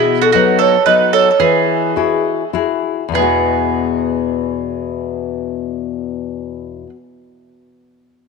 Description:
italian folk, Italian serenade; 96-118 BPM; 3/4; straight; E major; A4 = 441 Hz
marimba with medium mallets; melody; 0.0-6.9 s; G#4 to D#5; -15 LUFS; right 2 dB
mandolin; second line; 0.0-6.9 s; E4 to B4; -18 LUFS; right 13 dB
nylon-string guitar; accompaniment; 0.0-7.0 s; E2 to G#4; -18 LUFS; left 11 dB
moderate plate reverb, RT60 3.4 s; 1960s-style stereo with parts hard left and right; -13 LUFS; side -4 dB against mid
0.0-3.1 A section; 3.1-6.9 B section
slowing down 0.0-3.1
0.0 B; 1.4 Eadd9
0.34 0.86 | 1.39 1.95 2.53 | 3.14 3.77 4.39 | 5.01 5.63 6.26

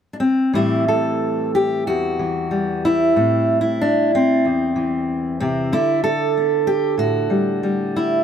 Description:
folk, solo fingerstyle acoustic guitar; 93 BPM; 4/4; rubato; A dorian; A4 = 441 Hz
fingerpicked steel-string acoustic guitar; solo; 0.1-8.2 s; E2 to A4; -17 LUFS; equal
light reverb; -17 LUFS; side -8 dB against mid
0.5-8.2 A section
0.0 N.C.; 0.5 Am7; 5.7 Dsus4
| 0.54 1.21 1.87 2.51 | 3.15 3.80 4.44 5.08 | 5.72 6.35 6.99 7.63

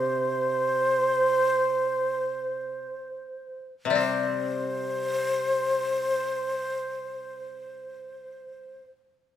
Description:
japanese traditional, Japanese chamber music; free time; A4 = 440 Hz
breathy shakuhachi; melody; 0.0-8.8 s; C5; -26 LUFS; equal
koto; accompaniment; 0.0-8.9 s; C3 to C4; -30 LUFS; left 5 dB
moderate recital hall reverb, RT60 1.4 s; minimal, uncompressed stereo recording; -24 LUFS; side -10 dB against mid
0.0-4.0 A section; 4.0-9.4 B section
slowing down 0.0-4.0
free time

